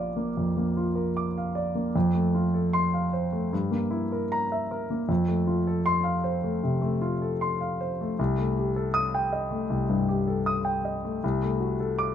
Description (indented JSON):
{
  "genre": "classical, romantic character piece for solo piano",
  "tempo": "77 BPM",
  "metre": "4/4",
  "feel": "rubato",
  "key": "unclear",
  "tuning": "A4 = 441 Hz",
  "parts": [
    { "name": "warm concert grand piano", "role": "solo", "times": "0.0-12.1 s", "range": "Bb1 to Eb6", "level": "-24 LUFS", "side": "equal", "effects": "none" }
  ],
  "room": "light reverb",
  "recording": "none",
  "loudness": "-24 LUFS",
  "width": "side -9 dB against mid",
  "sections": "0.0-12.1 A section",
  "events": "none",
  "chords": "0.0 Bb; 1.9 F; 3.5 Edim/G; 5.1 F; 8.2 Am7b5/C; 11.2 D7/C",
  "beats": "0.37 1.16 | 1.95 2.74 3.52 4.31 | 5.09 5.86 6.63 7.41 | 8.19 8.95 9.71 10.47 | 11.23 12.00"
}